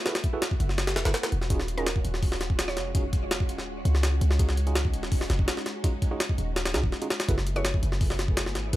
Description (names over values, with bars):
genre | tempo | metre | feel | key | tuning
drum and bass, jungle | 166 BPM | 4/4 | straight | unclear | A4 = 440 Hz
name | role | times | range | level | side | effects
soft string machine | sustained chords | 0.0-8.8 s | Ab3 to Ab4 | -37 LUFS | equal | ensemble chorus
tine electric piano | stabs | 0.1-8.8 s | Db4 to Cb5 | -36 LUFS | right 3 dB | medium tremolo, dub echo
jungle sampler-style drum kit | drums | 0.1-8.8 s | hi-hat, kick drum, snare drum | -27 LUFS | equal | studio reverb
warm 808-style bass | bass | 0.6-8.8 s | Eb1 to Db2 | -28 LUFS | equal | tube saturation
mallet-like synth pluck | melody | 1.8-3.0, 7.6-7.8 s | Bb4 to Db5 | -38 LUFS | right 2 dB | chorus, dub echo
room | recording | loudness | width
little or no reverb | none | -24 LUFS | side -16 dB against mid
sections
0.0-8.8 A section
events
none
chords
0.0 Gbm11; 1.5 Ebm11; 7.3 Gbm11